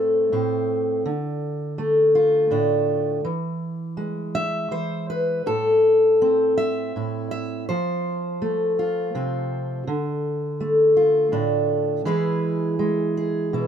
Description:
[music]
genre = folk, solo fingerstyle acoustic guitar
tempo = 55 BPM (dotted quarters)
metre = 6/8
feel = rubato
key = A minor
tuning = A4 = 442 Hz
[part]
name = fingerpicked steel-string acoustic guitar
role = solo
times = 0.0-13.7 s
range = A2 to E5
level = -20 LUFS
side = equal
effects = none
[sound]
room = light reverb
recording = close, detailed microphones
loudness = -20 LUFS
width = side -8 dB against mid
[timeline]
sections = 0.0-13.7 A section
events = none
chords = 0.0 Am; 1.0 Dm; 3.2 E; 5.5 Am; 7.7 F; 9.9 Dm; 12.0 E

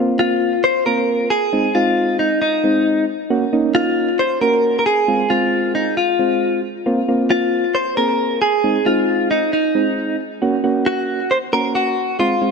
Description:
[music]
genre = pop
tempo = 135 BPM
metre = 4/4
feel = straight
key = Bb minor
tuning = A4 = 441 Hz
[part]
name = soft electric-piano-like synth keys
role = accompaniment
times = 0.0-12.5 s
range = Ab3 to Ab4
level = -20 LUFS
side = right 2 dB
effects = chorus
[part]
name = direct-recorded clean electric guitar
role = melody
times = 0.2-12.5 s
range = Eb4 to C5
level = -17 LUFS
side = left 1 dB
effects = lush chorus, ping-pong delay
[sound]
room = moderate lush hall reverb, RT60 3.0 s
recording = none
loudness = -15 LUFS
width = side -5 dB against mid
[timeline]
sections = 0.0-12.5 A section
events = none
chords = 0.0 Bbsus2; 1.5 Ab; 3.3 Gb; 5.1 Fm; 6.9 Bbsus2; 8.6 Ab; 10.4 Gb

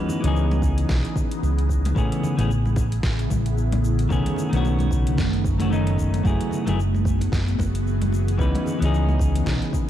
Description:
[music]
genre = sunset chillout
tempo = 112 BPM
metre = 4/4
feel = swing 58% on 16ths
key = unclear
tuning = A4 = 440 Hz
[part]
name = clean electric guitar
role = accompaniment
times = 0.0-9.9 s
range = D#3 to B4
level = -26 LUFS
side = left 2 dB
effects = auto-pan, digital delay
[part]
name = ethereal airy pad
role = sustained chords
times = 0.0-9.9 s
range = C#3 to G#4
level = -28 LUFS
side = right 1 dB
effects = ensemble chorus, built-in reverb, phaser
[part]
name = smooth R&B drum kit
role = drums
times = 0.1-9.9 s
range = cabasa, hi-hat, snare drum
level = -34 LUFS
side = equal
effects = studio reverb
[part]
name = congas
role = percussion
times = 0.1-9.9 s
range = none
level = -32 LUFS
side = left 2 dB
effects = none
[part]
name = fingered electric bass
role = bass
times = 0.2-9.6 s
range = F#1 to C#2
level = -22 LUFS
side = equal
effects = tube saturation
[part]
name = electronic kick drum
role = drums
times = 0.6-9.9 s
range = none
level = -26 LUFS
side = equal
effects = studio reverb
[sound]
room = light reverb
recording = dark, warm production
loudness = -19 LUFS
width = side -11 dB against mid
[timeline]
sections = 0.0-9.9 A section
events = none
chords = 0.0 C#m9; 2.0 Amaj9; 4.1 B9; 6.2 F#m11; 8.4 C#m9

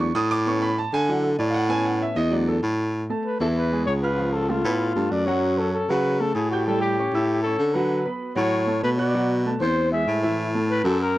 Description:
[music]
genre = jazz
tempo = 194 BPM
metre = 4/4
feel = straight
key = A major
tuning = A4 = 440 Hz
[part]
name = warm concert grand piano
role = accompaniment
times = 0.0-11.2 s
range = E3 to G6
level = -26 LUFS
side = right 1 dB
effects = none
[part]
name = breathy baritone saxophone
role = bass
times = 0.0-11.2 s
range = C#2 to D3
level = -23 LUFS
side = equal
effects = none
[part]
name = breathy trumpet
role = melody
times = 3.3-11.2 s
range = E#4 to E5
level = -25 LUFS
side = left 2 dB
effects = none
[sound]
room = small room reverb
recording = dry, close 1970s-style studio recording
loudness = -20 LUFS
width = side -16 dB against mid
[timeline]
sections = 0.0-2.9 A section; 2.9-11.2 B section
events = grand piano solo 0.0-2.9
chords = 0.5 Aadd9; 1.1 Dadd9; 1.7 Aadd9; 2.3 E7sus4; 2.9 Amaj9; 4.2 C#aug7; 5.4 F#m; 6.7 A7; 7.9 D6 (rootless); 9.1 Bm7; 9.8 Eaug; 10.4 A5

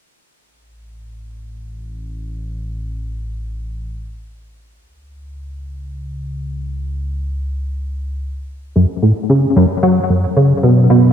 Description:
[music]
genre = ambient, sequencer-driven space music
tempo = free time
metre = none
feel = none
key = unclear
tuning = A4 = 440 Hz
[part]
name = analog drone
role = bass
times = 0.8-11.1 s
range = A1 to F#2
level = -25 LUFS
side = equal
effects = chorus, phaser
[part]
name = plucky analog bass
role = riff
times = 8.8-11.1 s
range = F#2 to F#3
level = -10 LUFS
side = equal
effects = ensemble chorus, ping-pong delay
[sound]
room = moderate spring reverb, RT60 2.4 s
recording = echo-heavy mix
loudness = -15 LUFS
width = side -9 dB against mid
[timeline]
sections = 0.2-11.1 A section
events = fade-in on synth drone 0.2-11.1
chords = 0.2 N.C.; 8.8 F#5

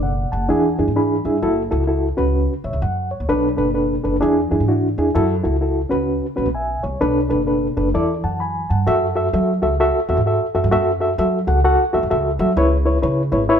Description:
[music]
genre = uptempo 1960s-style soul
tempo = 129 BPM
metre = 4/4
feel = swing 62% on 8ths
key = F# minor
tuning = A4 = 440 Hz
[part]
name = reed electric piano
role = accompaniment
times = 0.0-13.6 s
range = B2 to B5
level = -18 LUFS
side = equal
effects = fast tremolo
[part]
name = upright bass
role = bass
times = 0.0-13.6 s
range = F#1 to F#3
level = -21 LUFS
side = equal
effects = none
[sound]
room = moderate large studio reverb, RT60 1.0 s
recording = band playing live in one room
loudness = -16 LUFS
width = side -8 dB against mid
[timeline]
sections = 0.0-8.9 A section; 8.9-13.6 B section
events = reed electric piano fill 0.7-1.4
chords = 0.5 E7; 1.4 F#m7; 2.1 C#7sus4; 3.3 Bm7; 4.2 E7; 5.2 F#m7; 5.8 C#7sus4; 7.0 Bm7; 7.9 E7sus4; 8.9 F#m7; 12.6 C#m7

